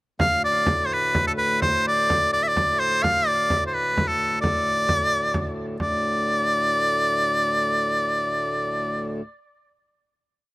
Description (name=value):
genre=medieval dance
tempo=84-94 BPM (dotted quarters)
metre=6/8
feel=straight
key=unclear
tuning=A4 = 441 Hz
part: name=edgy shawm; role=melody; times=0.2-9.2 s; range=A4 to F5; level=-21 LUFS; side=equal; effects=slapback echo
part: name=pedal harmonium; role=drone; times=0.2-9.2 s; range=D2 to A2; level=-30 LUFS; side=equal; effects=none
part: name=frame drum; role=percussion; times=0.2-6.0 s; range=none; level=-27 LUFS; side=right 1 dB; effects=none
room=little or no reverb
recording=recorded outdoors, with no room sound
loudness=-20 LUFS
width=side -22 dB against mid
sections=0.2-5.8 A section; 5.8-8.4 final chord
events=speeding up 0.2-8.4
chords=none